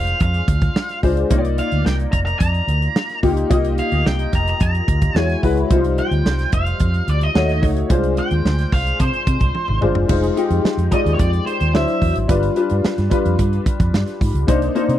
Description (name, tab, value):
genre	polished 1980s jazz-funk pop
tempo	109 BPM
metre	4/4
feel	straight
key	C minor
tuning	A4 = 440 Hz
part	octave-fuzz lead guitar	melody	0.0-12.1 s	C5 to Bb5	-24 LUFS	right 1 dB	distortion
part	clear baby grand piano	accompaniment	0.0-15.0 s	F3 to Eb5	-21 LUFS	left 3 dB	ensemble chorus
part	vintage muted fingered electric bass	bass	0.0-15.0 s	F1 to C3	-19 LUFS	right 1 dB	none
part	modern studio drum kit	drums	0.1-15.0 s	crash cymbal, hi-hat, kick drum, snare drum, toms	-20 LUFS	right 1 dB	none
room	little or no reverb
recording	dry, close 1970s-style studio recording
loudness	-16 LUFS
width	side -12 dB against mid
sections	0.0-10.1 A section; 10.1-15.0 B section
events	drum fill 9.5-10.1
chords	0.0 Dm7b5; 1.3 Cm11; 5.2 E69; 5.7 Eb69/C; 7.4 D#m7b5; 7.9 Dm7b5/C; 10.1 Fm7; 11.7 D9; 12.3 G7; 14.5 Cm9